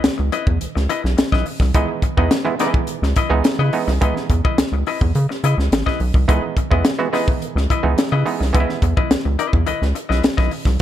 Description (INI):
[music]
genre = funk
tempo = 106 BPM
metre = 4/4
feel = straight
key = C# minor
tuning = A4 = 442 Hz
[part]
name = semi-hollow electric guitar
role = accompaniment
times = 0.0-10.7 s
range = E4 to D#5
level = -25 LUFS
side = left 8 dB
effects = none
[part]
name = muted clav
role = stabs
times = 0.0-9.3 s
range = D#3 to F#4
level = -23 LUFS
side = right 6 dB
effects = slapback echo
[part]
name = rubbery square bass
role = bass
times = 0.0-10.8 s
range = G#1 to C#3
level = -18 LUFS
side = equal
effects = none
[part]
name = crisp fusion drum kit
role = drums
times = 0.0-10.8 s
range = hi-hat, kick drum, snare drum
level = -19 LUFS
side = equal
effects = none
[sound]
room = small room ambience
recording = dark, warm production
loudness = -16 LUFS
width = side -12 dB against mid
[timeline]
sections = 0.0-10.8 A section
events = none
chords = 0.0 C#m9